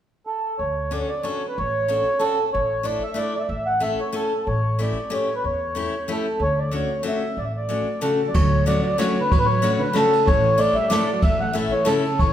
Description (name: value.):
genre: musette waltz.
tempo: 186 BPM.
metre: 3/4.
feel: swing 55% on 8ths.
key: D major.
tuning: A4 = 440 Hz.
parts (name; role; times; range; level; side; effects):
mellow accordion; melody; 0.3-12.3 s; A4 to F#5; -22 LUFS; equal; none.
upright bass; bass; 0.6-12.3 s; A1 to E2; -26 LUFS; equal; none.
picked steel-string acoustic guitar; accompaniment; 0.9-12.0 s; A3 to A4; -27 LUFS; left 4 dB; none.
hollow-body jazz guitar; second line; 8.0-12.3 s; C#3 to A3; -27 LUFS; right 1 dB; none.
jazz brush drum kit; drums; 8.3-12.3 s; crash cymbal, kick drum, ride cymbal, snare drum; -24 LUFS; equal; none.
room: wet recital hall reverb, RT60 1.5 s.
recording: recorded in a church or concert hall.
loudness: -19 LUFS.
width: side -10 dB against mid.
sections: 0.6-8.3 A section; 8.3-12.3 A section.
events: none.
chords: 0.0 N.C.; 0.6 Dmaj7; 2.5 Asus4; 3.5 A; 4.5 A7; 6.4 Dmaj7; 10.3 Asus4; 11.2 A.